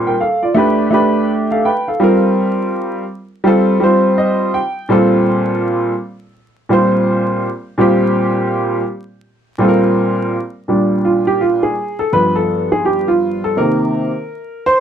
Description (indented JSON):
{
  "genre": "hip hop",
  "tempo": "83 BPM",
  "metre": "4/4",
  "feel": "swing 62% on 16ths",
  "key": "Bb major",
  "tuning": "A4 = 439 Hz",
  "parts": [
    { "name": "warm upright piano", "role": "solo", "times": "0.0-14.8 s", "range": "G2 to G5", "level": "-13 LUFS", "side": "right 1 dB", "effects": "none" }
  ],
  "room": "moderate small room reverb, RT60 0.5 s",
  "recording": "dark, warm production, vinyl crackle",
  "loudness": "-13 LUFS",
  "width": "side -8 dB against mid",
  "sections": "0.0-10.7 A section; 10.7-14.8 B section",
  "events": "upright piano fill 3.8-4.9; upright piano solo 10.7-14.8",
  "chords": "0.0 Bbsus2; 0.6 G; 2.0 C5; 3.5 F; 4.9 Bbsus2; 10.7 Bb6; 12.1 G7; 13.6 Cm7"
}